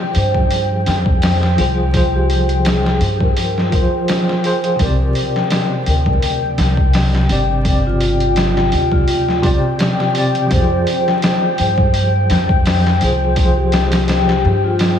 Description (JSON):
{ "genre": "trip hop", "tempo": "84 BPM", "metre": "4/4", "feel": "swing 55% on 16ths", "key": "unclear", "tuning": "A4 = 440 Hz", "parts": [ { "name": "bell-like tine electric piano", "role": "accompaniment", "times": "0.0-15.0 s", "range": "C3 to D5", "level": "-20 LUFS", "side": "equal", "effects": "tremolo, vintage 12-bit sampler grit, tape echo" }, { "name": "deep dark ambient pad", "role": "sustained chords", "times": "0.0-15.0 s", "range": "G5", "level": "-21 LUFS", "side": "left 5 dB", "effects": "chorus, built-in reverb" }, { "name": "trip hop sampler-style drum kit", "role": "drums", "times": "0.1-15.0 s", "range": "hi-hat, kick drum, snare drum", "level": "-18 LUFS", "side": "equal", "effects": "overdrive" }, { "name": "vibraphone with soft mallets", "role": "melody", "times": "0.2-15.0 s", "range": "F4 to C5", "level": "-23 LUFS", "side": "equal", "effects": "dub echo" }, { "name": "upright bass", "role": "bass", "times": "0.2-15.0 s", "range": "G1 to G2", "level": "-17 LUFS", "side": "equal", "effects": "none" } ], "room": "moderate cathedral reverb, RT60 6.6 s", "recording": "dreamy mix soaked in reverb, vinyl crackle, studio reverb", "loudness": "-13 LUFS", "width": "side -9 dB against mid", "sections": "0.0-15.0 A section", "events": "none", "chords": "0.0 Fm; 4.8 Csus2; 10.5 Fm", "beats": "0.51 1.22 | 1.94 2.65 3.37 4.08 | 4.79 5.51 6.22 6.94 | 7.65 8.37 9.08 9.79 | 10.51 11.22 11.94 12.65 | 13.37 14.08 14.79" }